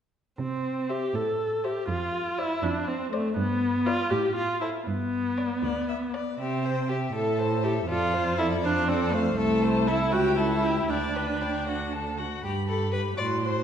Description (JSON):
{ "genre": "quick classical-period movement for string quartet", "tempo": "80 BPM (dotted quarters)", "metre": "6/8", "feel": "straight", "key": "G major from 9.4 s", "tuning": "A4 = 440 Hz", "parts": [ { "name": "rich viola", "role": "accompaniment", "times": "0.4-13.6 s", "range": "A3 to A4", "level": "-27 LUFS", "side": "equal", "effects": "none" }, { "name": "rich cello", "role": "bass", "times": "0.4-13.6 s", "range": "C2 to C3", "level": "-30 LUFS", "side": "right 3 dB", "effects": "none" }, { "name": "rich violin", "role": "melody", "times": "0.9-13.6 s", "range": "C5 to C6", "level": "-35 LUFS", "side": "left 5 dB", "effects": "none" }, { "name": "clear violin", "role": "second line", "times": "0.9-13.6 s", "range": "F#4 to D5", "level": "-34 LUFS", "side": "left 3 dB", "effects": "none" } ], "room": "wet recital hall reverb, RT60 1.5 s", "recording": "none", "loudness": "-24 LUFS", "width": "side -8 dB against mid", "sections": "0.4-12.4 A section; 12.4-13.6 B section", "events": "none", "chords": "0.4 C; 1.2 Am; 1.9 Dm7/F; 3.4 G; 4.1 Am; 4.9 G; 6.4 C; 7.1 Am; 7.9 Dm7/F; 9.4 Am/C; 10.1 A7/C#; 10.9 G/D; 12.4 G", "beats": "| 0.40 1.15 | 1.89 2.63 | 3.38 4.12 | 4.87 5.63 | 6.40 7.14 | 7.89 8.63 | 9.36 10.12 | 10.89 11.66 | 12.43 13.18" }